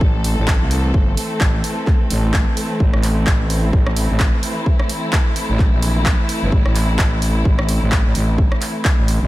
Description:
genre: bass house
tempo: 129 BPM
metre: 4/4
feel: swing 57% on 16ths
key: A minor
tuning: A4 = 440 Hz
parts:
  - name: clear studio string section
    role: sustained chords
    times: 0.0-9.3 s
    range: E3 to A4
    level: -24 LUFS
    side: equal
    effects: sidechain pumping
  - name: growling FM bass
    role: bass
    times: 0.0-9.3 s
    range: G1 to C2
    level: -18 LUFS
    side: equal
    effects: tube saturation, sidechain pumping
  - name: electronic kick drum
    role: drums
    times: 0.0-9.0 s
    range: none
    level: -16 LUFS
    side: equal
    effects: overdrive
  - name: house drum kit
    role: drums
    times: 0.2-9.2 s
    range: handclaps, hi-hat, rim click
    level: -24 LUFS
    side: equal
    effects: overdrive
room: little or no reverb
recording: none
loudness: -15 LUFS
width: side -17 dB against mid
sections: 0.0-9.3 A section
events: none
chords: 0.0 Am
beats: 0.01 0.48 | 0.94 1.41 1.87 2.34 | 2.80 3.27 3.73 4.20 | 4.66 5.13 5.59 6.06 | 6.52 6.99 7.45 7.92 | 8.38 8.85

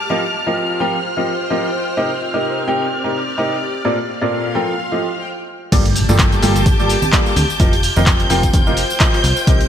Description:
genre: piano house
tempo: 128 BPM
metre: 4/4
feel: swing 57% on 16ths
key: unclear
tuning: A4 = 444 Hz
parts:
  - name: string machine, violins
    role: sustained chords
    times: 0.0-9.7 s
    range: F6 to G6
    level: -24 LUFS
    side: equal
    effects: ensemble chorus, sidechain pumping
  - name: clear studio string section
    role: texture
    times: 0.0-9.7 s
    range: Bb3 to D6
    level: -24 LUFS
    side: equal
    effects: sidechain pumping
  - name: clear upright piano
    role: riff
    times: 0.1-9.6 s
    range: G2 to G5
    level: -19 LUFS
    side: equal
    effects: wide subtle chorus, sidechain pumping, ping-pong delay
  - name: plucky analog bass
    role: bass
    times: 5.7-9.7 s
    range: F1 to D2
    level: -18 LUFS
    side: equal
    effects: sidechain pumping
  - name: electronic kick drum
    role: drums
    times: 5.7-9.6 s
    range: none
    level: -15 LUFS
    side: equal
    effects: none
  - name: punchy analog drum machine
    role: drums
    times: 5.7-9.7 s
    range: crash cymbal, handclaps, hi-hat, shaker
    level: -20 LUFS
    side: equal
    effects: none
  - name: tambourine and congas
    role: percussion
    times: 5.7-9.7 s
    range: none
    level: -26 LUFS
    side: right 1 dB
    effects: none
  - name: impact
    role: sound effects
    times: 5.9-7.6 s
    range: none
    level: -24 LUFS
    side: equal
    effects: none
room: moderate lush hall reverb, RT60 1.8 s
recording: bright 1980s-style digital production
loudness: -14 LUFS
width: side -9 dB against mid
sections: 0.0-5.7 A section; 5.7-9.7 B section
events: stop 5.3-5.7; drop 5.7-9.7; impact 5.7-7.6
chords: 0.1 F9sus4; 2.0 Cm7; 3.8 Bbmaj9; 4.8 F9; 5.7 Gm9; 7.6 F9sus4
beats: | 0.10 0.57 1.03 1.50 | 1.97 2.44 2.91 3.38 | 3.85 4.32 4.79 5.25 | 5.72 6.19 6.66 7.13 | 7.60 8.07 8.54 9.00 | 9.47

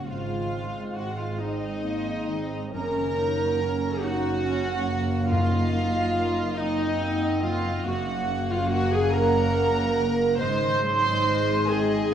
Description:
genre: cinematic, emotional film score for orchestra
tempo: 47 BPM (dotted quarters)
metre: 6/8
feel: rubato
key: Gb lydian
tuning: A4 = 441 Hz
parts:
  - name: warm studio violin section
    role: melody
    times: 0.0-12.1 s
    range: C5 to Gb5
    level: -39 LUFS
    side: left 2 dB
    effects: none
  - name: clear studio violin section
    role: second line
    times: 0.0-12.1 s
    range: Eb5 to C6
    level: -34 LUFS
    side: equal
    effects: none
  - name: dark clarinet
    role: second line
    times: 0.0-12.1 s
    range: Gb3 to Eb4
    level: -33 LUFS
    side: right 1 dB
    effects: none
  - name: mellow hollow concert flute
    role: second line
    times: 0.0-12.1 s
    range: Eb5 to C6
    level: -35 LUFS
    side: equal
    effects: none
  - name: rich studio viola section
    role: accompaniment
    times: 0.0-12.1 s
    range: Eb4 to C5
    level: -27 LUFS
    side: right 2 dB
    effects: none
  - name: mellow French horn section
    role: sustained chords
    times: 0.0-12.1 s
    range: Ab3 to Eb4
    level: -31 LUFS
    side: right 1 dB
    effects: none
  - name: concert harp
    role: arpeggios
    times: 0.0-12.1 s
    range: Gb2 to Bb5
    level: -35 LUFS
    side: left 7 dB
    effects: none
  - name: dark studio cello section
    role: bass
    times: 0.0-12.1 s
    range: Gb2 to Ab2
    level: -33 LUFS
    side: right 2 dB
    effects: none
  - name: warm studio double bass section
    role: bass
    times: 0.0-12.1 s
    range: Gb1 to Ab1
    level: -33 LUFS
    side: right 2 dB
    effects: none
  - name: timpani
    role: percussion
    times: 5.3-6.5 s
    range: Gb2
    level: -30 LUFS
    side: left 1 dB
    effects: none
room: wet scoring stage reverb, RT60 1.7 s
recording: worn, warbling old tape, cassette tape, warbly pitch drift, small room ambience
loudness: -22 LUFS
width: side -9 dB against mid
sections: 0.0-12.1 A section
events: none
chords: 0.1 Ab; 2.7 Gb; 5.3 Ebm/Gb; 7.9 Gb; 10.4 Ab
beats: | 0.08 1.39 | 2.74 4.04 | 5.32 6.59 | 7.87 9.15 | 10.42 11.70

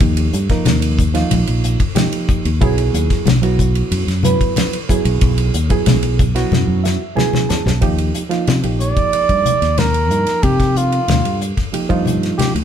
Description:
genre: electric jazz fusion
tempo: 92 BPM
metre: 4/4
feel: straight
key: unclear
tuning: A4 = 440 Hz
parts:
  - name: barky reed electric piano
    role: accompaniment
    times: 0.0-12.6 s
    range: F3 to A5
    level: -20 LUFS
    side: right 5 dB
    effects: overdrive
  - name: fingered electric bass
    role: bass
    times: 0.0-12.6 s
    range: Bb1 to C3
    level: -17 LUFS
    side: equal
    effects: none
  - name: damped 70s drum kit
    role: drums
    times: 0.0-12.6 s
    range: hi-hat, kick drum, ride cymbal, snare drum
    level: -19 LUFS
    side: left 1 dB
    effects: none
  - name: congas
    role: percussion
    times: 0.0-12.5 s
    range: none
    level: -20 LUFS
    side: left 4 dB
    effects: none
  - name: trumpet with bucket mute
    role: melody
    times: 8.8-12.5 s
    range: F4 to D5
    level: -17 LUFS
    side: right 3 dB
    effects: none
room: moderate studio reverb, RT60 0.9 s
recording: band playing live in one room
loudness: -13 LUFS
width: side -9 dB against mid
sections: 0.0-7.8 A section; 7.8-12.6 B section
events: drum fill 6.5-7.8; reed electric piano fill 6.5-7.8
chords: 0.0 Ebsus2; 2.6 Bsus4; 7.8 Ebmaj9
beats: | 0.01 0.66 1.31 1.97 | 2.62 3.27 3.92 4.57 | 5.22 5.87 6.53 7.18 | 7.83 8.48 9.13 9.78 | 10.44 11.09 11.74 12.39

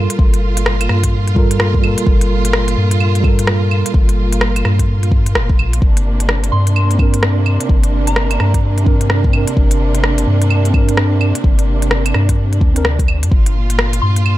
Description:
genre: future garage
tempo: 128 BPM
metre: 4/4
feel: swing 62% on 16ths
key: G minor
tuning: A4 = 440 Hz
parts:
  - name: mellow tine electric piano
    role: accompaniment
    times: 0.0-12.9 s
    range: G3 to Bb4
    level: -22 LUFS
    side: right 3 dB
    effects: medium stereo tremolo, sidechain pumping, dub echo
  - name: clear studio string section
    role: sustained chords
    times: 0.0-14.4 s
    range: Bb2 to F4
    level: -22 LUFS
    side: right 1 dB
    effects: vintage 12-bit sampler grit, sidechain pumping
  - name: soft dub sub bass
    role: bass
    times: 0.0-14.4 s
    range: F1 to G2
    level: -15 LUFS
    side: equal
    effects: sidechain pumping
  - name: organic electronic drum kit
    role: drums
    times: 0.1-14.4 s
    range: claves, hi-hat, rim click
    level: -19 LUFS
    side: equal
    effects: none
  - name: electronic kick drum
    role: drums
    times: 0.2-13.4 s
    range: none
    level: -14 LUFS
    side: equal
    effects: none
  - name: soft synth bell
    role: melody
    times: 6.5-8.5, 14.0-14.3 s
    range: Bb5 to C6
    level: -27 LUFS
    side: left 1 dB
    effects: chorus, phaser, vintage 12-bit sampler grit, tape echo
room: little or no reverb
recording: none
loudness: -12 LUFS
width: side -15 dB against mid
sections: 0.0-14.4 A section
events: none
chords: 0.0 Gm9; 5.8 Bbadd9/G; 13.3 Gm7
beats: | 0.19 0.66 1.13 1.60 | 2.07 2.54 3.00 3.47 | 3.94 4.41 4.88 5.35 | 5.82 6.29 6.75 7.22 | 7.69 8.16 8.63 9.10 | 9.57 10.04 10.50 10.97 | 11.44 11.91 12.38 12.85 | 13.32 13.79 14.25

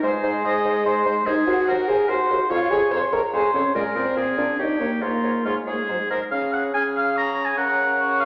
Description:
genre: quick classical-period movement for wind quintet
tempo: 144 BPM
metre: 3/4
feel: straight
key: Db major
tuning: A4 = 440 Hz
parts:
  - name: concert flute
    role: melody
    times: 0.0-8.3 s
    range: Ab4 to F6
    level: -32 LUFS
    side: equal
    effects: none
  - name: warm oboe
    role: second line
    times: 0.0-8.3 s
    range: F4 to Bb5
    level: -26 LUFS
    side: equal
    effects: none
  - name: bright clarinet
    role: accompaniment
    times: 0.0-8.3 s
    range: Ab4 to D5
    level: -32 LUFS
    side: equal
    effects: none
  - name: mellow French horn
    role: accompaniment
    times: 0.0-8.3 s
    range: Gb3 to C5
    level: -26 LUFS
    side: equal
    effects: none
  - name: warm bassoon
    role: bass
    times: 0.0-8.3 s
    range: Eb2 to Db3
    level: -31 LUFS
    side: equal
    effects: none
room: wet recital hall reverb, RT60 1.8 s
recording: none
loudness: -22 LUFS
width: mono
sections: 0.0-6.3 A section; 6.3-8.3 B section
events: none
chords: 0.0 Ab; 1.3 Ab7/Eb; 2.5 Db/F; 3.8 Bb7; 4.6 Eb7; 5.0 Db/Ab; 5.9 Ab; 6.3 Db; 7.6 Gb/Db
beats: | 0.03 0.45 0.85 | 1.27 1.68 2.09 | 2.50 2.92 3.33 | 3.75 4.17 4.59 | 5.02 5.45 5.88 | 6.31 6.74 7.16 | 7.58 7.99

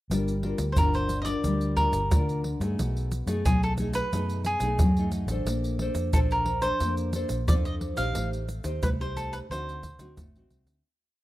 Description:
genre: samba and choro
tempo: 89 BPM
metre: 4/4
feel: straight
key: G minor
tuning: A4 = 440 Hz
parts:
  - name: nylon-string guitar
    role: accompaniment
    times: 0.1-10.8 s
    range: B2 to C5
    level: -30 LUFS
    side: left 1 dB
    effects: none
  - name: vintage muted fingered electric bass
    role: bass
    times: 0.1-10.8 s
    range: F#1 to G2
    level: -30 LUFS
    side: equal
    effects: none
  - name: egg shaker, surdo and pandeiro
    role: percussion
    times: 0.1-10.8 s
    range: none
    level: -28 LUFS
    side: equal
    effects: none
  - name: cavaquinho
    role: melody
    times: 0.7-10.1 s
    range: G#4 to F5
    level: -30 LUFS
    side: right 1 dB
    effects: none
room: studio reverb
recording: dry, close 1970s-style studio recording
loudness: -24 LUFS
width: side -16 dB against mid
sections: 0.1-10.8 A section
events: fade-out 8.2-10.8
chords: 0.1 Gm7; 2.8 B6; 5.5 Bbmaj9; 8.2 Am7b5; 9.5 D7b9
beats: | 0.10 0.77 1.44 2.11 | 2.78 3.45 4.12 4.79 | 5.47 6.14 6.81 7.48 | 8.15 8.83 9.50 10.17

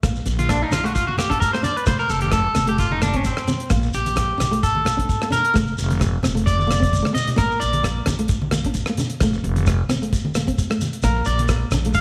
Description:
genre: highlife guitar band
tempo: 131 BPM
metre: 4/4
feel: swing 54% on 16ths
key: Bb major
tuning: A4 = 439 Hz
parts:
  - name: nylon-string guitar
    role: accompaniment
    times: 0.0-12.0 s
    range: A3 to D4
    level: -28 LUFS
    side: equal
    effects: none
  - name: upright bass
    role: bass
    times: 0.0-12.0 s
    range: F1 to Bb1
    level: -26 LUFS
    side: equal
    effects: none
  - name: damped 70s drum kit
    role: drums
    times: 0.0-12.0 s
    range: hi-hat, kick drum, rim click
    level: -27 LUFS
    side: equal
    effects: none
  - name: shekere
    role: percussion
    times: 0.0-12.0 s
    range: none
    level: -31 LUFS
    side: equal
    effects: none
  - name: electric guitar at the edge of break-up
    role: arpeggios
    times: 0.4-7.8, 11.0-12.0 s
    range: C4 to F5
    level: -24 LUFS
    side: equal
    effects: slapback echo
  - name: congas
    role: percussion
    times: 0.4-11.8 s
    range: none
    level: -29 LUFS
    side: equal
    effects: none
room: moderate echo chamber reverb, RT60 1.3 s, studio ambience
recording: none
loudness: -20 LUFS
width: mono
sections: 0.0-12.0 A section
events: clean electric guitar solo 0.0-12.0; drum fill 6.8-7.4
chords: 0.0 Bb; 1.9 F; 3.7 Bb; 5.5 F; 7.4 Bb; 9.2 F; 11.0 Bb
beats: | 0.03 0.49 0.95 1.41 | 1.87 2.33 2.79 3.25 | 3.71 4.17 4.62 5.08 | 5.54 6.00 6.46 6.92 | 7.37 7.83 8.29 8.75 | 9.21 9.66 10.12 10.58 | 11.04 11.49 11.95

